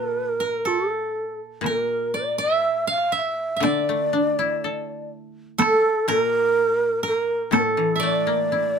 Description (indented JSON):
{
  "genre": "japanese traditional, Japanese chamber music",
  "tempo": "60 BPM",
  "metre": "2/4",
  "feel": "rubato",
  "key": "A miyako bushi",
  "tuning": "A4 = 440 Hz",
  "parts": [
    { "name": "breathy mellow long shakuhachi", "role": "melody", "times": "0.0-8.8 s", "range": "A4 to F5", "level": "-22 LUFS", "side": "right 1 dB", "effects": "none" },
    { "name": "koto", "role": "second line", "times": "0.0-8.8 s", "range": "A4 to F5", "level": "-26 LUFS", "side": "right 3 dB", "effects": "none" },
    { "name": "koto", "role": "accompaniment", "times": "0.0-8.8 s", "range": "A2 to A4", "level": "-28 LUFS", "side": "left 4 dB", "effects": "none" },
    { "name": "taiko ensemble", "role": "percussion", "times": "1.6-8.8 s", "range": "none", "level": "-23 LUFS", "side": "left 1 dB", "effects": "none" }
  ],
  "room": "moderate small room ambience, RT60 0.5 s",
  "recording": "none",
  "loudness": "-20 LUFS",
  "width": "side -6 dB against mid",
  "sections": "0.0-8.8 A section",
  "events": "none",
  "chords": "none",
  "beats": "0.63 | 1.64 2.64 | 3.63 4.62 | 5.59 6.56 | 7.52 8.52"
}